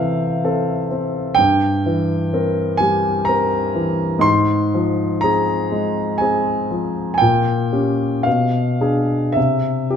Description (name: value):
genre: classical, romantic nocturne for solo piano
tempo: 50-64 BPM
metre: 3/4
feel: rubato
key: F minor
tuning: A4 = 441 Hz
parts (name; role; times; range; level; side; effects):
- warm concert grand piano; solo; 0.0-10.0 s; G2 to C6; -16 LUFS; equal; none
room: moderate recital hall reverb, RT60 1.7 s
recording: minimal, uncompressed stereo recording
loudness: -16 LUFS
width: side -8 dB against mid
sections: 0.0-10.0 A section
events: none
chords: 0.0 Am/C; 1.4 C7/G; 4.2 Fm/Ab; 7.2 Gdim/Bb; 8.3 Bdim7; 9.4 C